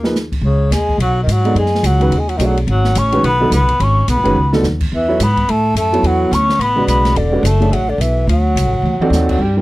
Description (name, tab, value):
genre	modal jazz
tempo	214 BPM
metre	4/4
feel	swing 60% on 8ths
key	C# phrygian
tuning	A4 = 440 Hz
part	mellow hollow concert flute	melody	0.0-9.6 s	Bb4 to C#6	-19 LUFS	right 1 dB	none
part	clear tenor saxophone	second line	0.0-9.6 s	C#3 to C#4	-21 LUFS	left 3 dB	none
part	warm concert grand piano	accompaniment	0.0-9.6 s	C#3 to E5	-17 LUFS	right 1 dB	none
part	upright bass	bass	0.0-9.6 s	E1 to A2	-16 LUFS	equal	none
part	open jazz drum kit	drums	0.0-9.3 s	crash cymbal, hi-hat, kick drum, ride cymbal, snare drum, toms	-24 LUFS	equal	none
room	little or no reverb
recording	dry, close 1970s-style studio recording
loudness	-12 LUFS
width	side -18 dB against mid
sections	0.4-9.4 A section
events	drum fill 0.0, 4.4, 8.8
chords	0.4 C#9sus4; 4.9 E9sus4; 8.3 D7b9